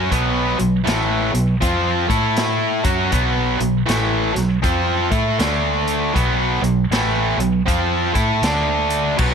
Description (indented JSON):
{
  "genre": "blues rock power trio and southern rock",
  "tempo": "79 BPM",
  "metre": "4/4",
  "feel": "swing 63% on 8ths",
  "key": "B minor",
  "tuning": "A4 = 439 Hz",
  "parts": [
    { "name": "overdriven electric guitar", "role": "riff", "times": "0.0-9.3 s", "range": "A2 to A4", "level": "-18 LUFS", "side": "right 1 dB", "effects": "none" },
    { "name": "vintage muted fingered electric bass", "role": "bass", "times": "0.0-9.3 s", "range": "A1 to A2", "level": "-23 LUFS", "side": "equal", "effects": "none" },
    { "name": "vintage drum kit", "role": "drums", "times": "0.1-9.3 s", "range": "crash cymbal, hi-hat, kick drum, snare drum", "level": "-24 LUFS", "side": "equal", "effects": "none" }
  ],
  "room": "light reverb",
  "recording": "none",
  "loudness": "-16 LUFS",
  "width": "side -6 dB against mid",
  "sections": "0.0-9.2 A section",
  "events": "none",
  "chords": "0.0 B5; 2.0 A5; 2.7 B5; 5.4 D5; 6.2 B5; 8.4 D5"
}